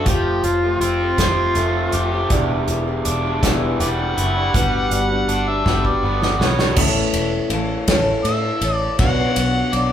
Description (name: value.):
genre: folk rock and heartland rock.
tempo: 54 BPM (dotted quarters).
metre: 6/8.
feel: straight.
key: unclear.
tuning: A4 = 439 Hz.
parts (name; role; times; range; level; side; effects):
overdriven harmonica; melody; 0.0-9.9 s; F4 to F#5; -23 LUFS; equal; none.
picked old ladder-braced acoustic guitar; accompaniment; 0.0-9.9 s; E2 to A4; -24 LUFS; left 3 dB; none.
raw garage guitar; riff; 0.0-6.8 s; E2 to G4; -22 LUFS; equal; overdrive.
fingered electric bass; bass; 0.0-9.9 s; E1 to A2; -23 LUFS; equal; none.
natural country drum kit; drums; 0.1-9.9 s; crash cymbal, hi-hat, kick drum, ride cymbal, snare drum; -21 LUFS; equal; none.
warm upright piano; accompaniment; 2.3-9.9 s; G3 to D5; -31 LUFS; right 6 dB; none.
room: moderate large studio reverb, RT60 0.8 s.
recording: band playing live in one room.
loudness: -16 LUFS.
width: side -10 dB against mid.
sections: 0.0-6.8 A section; 6.8-9.9 B section.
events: harmonica solo 0.0-6.8; drum fill 5.7-6.8.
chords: 0.1 Fadd9; 2.3 Em7; 4.5 Gmaj7; 6.8 A; 9.0 Bm.